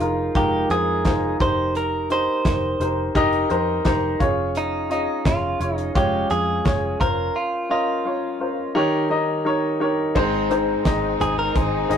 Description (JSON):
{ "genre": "piano-driven pop", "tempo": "86 BPM", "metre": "4/4", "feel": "straight", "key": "unclear", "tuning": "A4 = 440 Hz", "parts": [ { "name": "direct-recorded clean electric guitar", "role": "melody", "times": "0.0-12.0 s", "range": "Eb4 to C5", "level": "-24 LUFS", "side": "right 2 dB", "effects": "none" }, { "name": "warm baby grand piano", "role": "accompaniment", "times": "0.0-12.0 s", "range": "Ab2 to Eb5", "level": "-22 LUFS", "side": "left 1 dB", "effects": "none" }, { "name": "vintage muted picked electric bass", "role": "bass", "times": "0.0-12.0 s", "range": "F1 to F2", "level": "-28 LUFS", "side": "equal", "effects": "none" }, { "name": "damped 70s drum kit", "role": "drums", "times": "0.0-12.0 s", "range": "crash cymbal, hi-hat, kick drum, snare drum, toms", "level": "-23 LUFS", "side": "equal", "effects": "none" }, { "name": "warm studio string section", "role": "sustained chords", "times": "10.2-12.0 s", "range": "Ab3 to Eb4", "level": "-31 LUFS", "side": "left 4 dB", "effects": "none" } ], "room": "moderate studio reverb, RT60 0.6 s", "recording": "rough rehearsal-room recording", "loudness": "-19 LUFS", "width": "side -8 dB against mid", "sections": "0.0-10.2 A section; 10.2-12.0 B section", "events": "none", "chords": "0.0 Fm7; 1.4 Cm7/F; 4.2 Db/F; 7.0 Bbmadd9/F; 8.8 Eb7; 10.2 Ab" }